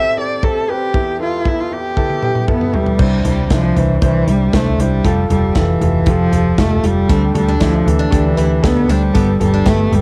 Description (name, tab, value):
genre	piano-driven pop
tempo	117 BPM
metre	4/4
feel	straight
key	unclear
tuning	A4 = 438 Hz
part	warm cello	melody	0.0-10.0 s	E3 to E5	-19 LUFS	equal	cassette tape
part	warm upright piano	accompaniment	0.0-10.0 s	A1 to C5	-23 LUFS	equal	cassette tape, plate reverb
part	natural country drum kit	drums	0.4-10.0 s	crash cymbal, hi-hat, kick drum, snare drum, toms	-21 LUFS	equal	cassette tape
part	vintage muted fingered electric bass	bass	3.0-10.0 s	F1 to D2	-19 LUFS	equal	none
part	picked steel-string acoustic guitar	riff	7.1-9.8 s	B3 to E4	-28 LUFS	equal	cassette tape
room	light reverb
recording	home recording on cassette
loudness	-15 LUFS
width	mono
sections	0.0-3.0 A section; 3.0-10.0 B section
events	drum fill 2.0-3.0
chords	0.0 Am7; 0.9 Em; 3.0 Cadd9; 5.0 Fadd9; 7.1 Dsus4; 9.2 Gadd9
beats	0.43 | 0.95 1.46 1.97 2.48 | 3.00 3.51 4.02 4.54 | 5.05 5.56 6.07 6.59 | 7.10 7.61 8.12 8.64 | 9.15 9.66